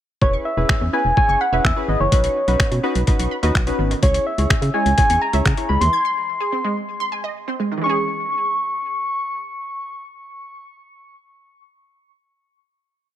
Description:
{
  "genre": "dance-pop",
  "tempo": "126 BPM",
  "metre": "4/4",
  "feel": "straight",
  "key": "C# minor",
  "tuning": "A4 = 437 Hz",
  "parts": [
    { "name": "soft struck synth lead", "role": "melody", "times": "0.2-11.1 s", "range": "C#5 to C#6", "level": "-21 LUFS", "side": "left 1 dB", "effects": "chorus, ping-pong delay" },
    { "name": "warm analog keys", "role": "accompaniment", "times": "0.2-5.8 s", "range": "C#4 to C#5", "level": "-25 LUFS", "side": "left 1 dB", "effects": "chorus, sidechain pumping" },
    { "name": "wide unison pluck", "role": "arpeggios", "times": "0.2-11.2 s", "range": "D#3 to G#6", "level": "-27 LUFS", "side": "right 4 dB", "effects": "wide subtle chorus, sidechain pumping, ping-pong delay" },
    { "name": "organ-like FM bass", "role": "bass", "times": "0.2-5.9 s", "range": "E1 to C#3", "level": "-21 LUFS", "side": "equal", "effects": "sidechain pumping" },
    { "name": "boom bap sampler-style drum kit", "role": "drums", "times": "0.2-5.9 s", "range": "finger snaps, hi-hat, kick drum", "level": "-18 LUFS", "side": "equal", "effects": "none" }
  ],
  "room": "light reverb",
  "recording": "none",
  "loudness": "-17 LUFS",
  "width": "side -11 dB against mid",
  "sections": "0.2-7.8 pre-chorus; 7.8-11.6 final chord",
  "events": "none",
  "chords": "0.2 E6; 2.1 Badd9; 4.0 C#m; 5.9 G#; 7.8 C#m"
}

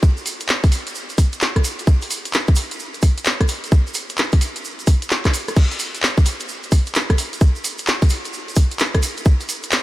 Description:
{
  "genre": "UK garage",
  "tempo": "130 BPM",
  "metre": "4/4",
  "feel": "swing 64% on 16ths",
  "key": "none",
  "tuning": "none",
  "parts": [
    { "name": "electronic kick drum", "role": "drums", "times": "0.0-9.4 s", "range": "none", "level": "-14 LUFS", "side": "equal", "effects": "none" },
    { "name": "tube shaker", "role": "percussion", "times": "0.0-9.8 s", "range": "none", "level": "-29 LUFS", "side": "right 4 dB", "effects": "none" },
    { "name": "garage drum kit", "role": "drums", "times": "0.3-9.8 s", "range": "crash cymbal, handclaps, hi-hat, rim click", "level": "-22 LUFS", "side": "equal", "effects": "none" }
  ],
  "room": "light reverb",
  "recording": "none",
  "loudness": "-16 LUFS",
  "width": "side -17 dB against mid",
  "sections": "0.0-9.8 A section",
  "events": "none",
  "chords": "none"
}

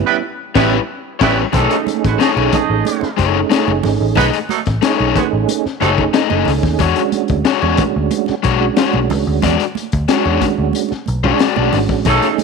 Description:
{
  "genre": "funk",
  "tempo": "91 BPM",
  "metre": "4/4",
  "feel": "straight",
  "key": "B mixolydian",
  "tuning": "A4 = 441 Hz",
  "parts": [
    { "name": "mellow tonewheel organ", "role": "stabs", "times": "0.0-12.4 s", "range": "G3 to G#4", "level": "-20 LUFS", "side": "right 15 dB", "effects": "chorus vibrato, slow rotary speaker" },
    { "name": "clear horn section", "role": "second line", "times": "0.1-5.9, 12.1-12.3 s", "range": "F#3 to D#5", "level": "-20 LUFS", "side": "right 11 dB", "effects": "none" },
    { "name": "crunchy overdriven guitar", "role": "accompaniment", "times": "0.5-12.3 s", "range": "G3 to D#5", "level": "-18 LUFS", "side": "left 13 dB", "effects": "none" },
    { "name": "vintage muted picked electric bass", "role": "bass", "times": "0.6-12.2 s", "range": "F#1 to E2", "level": "-18 LUFS", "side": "equal", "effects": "none" },
    { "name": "crunchy breakbeat drum kit", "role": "drums", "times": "0.6-12.4 s", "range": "crash cymbal, hi-hat, kick drum, snare drum", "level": "-20 LUFS", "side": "left 6 dB", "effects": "none" },
    { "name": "congas", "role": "percussion", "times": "1.5-12.4 s", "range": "none", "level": "-25 LUFS", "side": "right 11 dB", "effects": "none" }
  ],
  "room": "light reverb, studio reverb",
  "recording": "1960s-style stereo with parts hard left and right",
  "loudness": "-13 LUFS",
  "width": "side -4 dB against mid",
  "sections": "0.0-1.5 A section; 1.5-12.4 B section",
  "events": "band accent 0.0-1.5",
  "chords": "0.0 A9; 1.5 B13 (rootless); 6.8 E13 (rootless)"
}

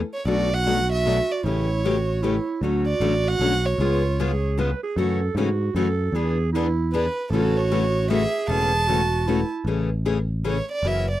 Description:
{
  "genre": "acoustic string swing (jazz manouche)",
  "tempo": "153 BPM",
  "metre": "3/4",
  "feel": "swing 63% on 8ths",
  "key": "A major",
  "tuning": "A4 = 437 Hz",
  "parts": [
    { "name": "growling clarinet", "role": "second line", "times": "0.0-9.7 s", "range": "E4 to B4", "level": "-27 LUFS", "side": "right 5 dB", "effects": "none" },
    { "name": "picked electric bass", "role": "bass", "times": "0.0-11.1 s", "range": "E1 to G#2", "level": "-24 LUFS", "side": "equal", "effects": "none" },
    { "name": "rich violin", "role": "melody", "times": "0.1-4.4, 6.9-11.2 s", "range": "A4 to A5", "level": "-26 LUFS", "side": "right 2 dB", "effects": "none" },
    { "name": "picked steel-string acoustic guitar", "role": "accompaniment", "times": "0.3-11.1 s", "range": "B2 to G#4", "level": "-25 LUFS", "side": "left 5 dB", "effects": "none" }
  ],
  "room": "little or no reverb",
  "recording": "dry, close 1970s-style studio recording",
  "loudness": "-20 LUFS",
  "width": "side -14 dB against mid",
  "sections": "0.3-9.7 A section; 9.7-11.2 B section",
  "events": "violin solo 9.7-11.2",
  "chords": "0.3 Bm7; 1.4 A7; 2.6 Dmaj7; 3.8 C#7; 5.0 F#m7; 6.1 E7; 7.3 A6; 9.7 Amaj7"
}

